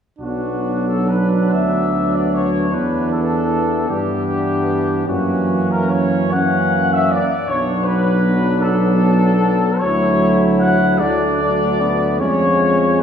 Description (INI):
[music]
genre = classical, hymn-like piece for brass band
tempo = 44-54 BPM (dotted quarters)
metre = 6/8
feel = rubato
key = B minor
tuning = A4 = 437 Hz
[part]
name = dark trumpet section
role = melody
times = 0.2-13.0 s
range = F#4 to F#5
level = -20 LUFS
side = left 3 dB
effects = none
[part]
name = clear flugelhorn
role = second line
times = 0.2-13.0 s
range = B3 to E4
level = -23 LUFS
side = right 4 dB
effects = none
[part]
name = bright trombone section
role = accompaniment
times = 0.2-13.0 s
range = E#3 to B3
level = -25 LUFS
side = left 2 dB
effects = none
[part]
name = clear trombone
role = accompaniment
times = 0.2-13.0 s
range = E3 to A3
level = -20 LUFS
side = right 1 dB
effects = none
[part]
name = warm tuba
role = bass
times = 0.2-13.0 s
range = B1 to G2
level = -21 LUFS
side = right 1 dB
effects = none
[sound]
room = wet concert hall reverb, RT60 2.4 s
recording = heard from further back in the room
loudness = -14 LUFS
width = side -8 dB against mid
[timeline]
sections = 0.2-13.0 A section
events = none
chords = 0.2 Bm; 2.7 Em7; 5.1 F#7; 7.5 Bm; 9.8 Dmaj7; 12.2 C#/E#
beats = | 0.21 1.53 | 2.73 3.90 | 5.08 6.35 | 7.49 8.64 | 9.82 11.02 | 12.21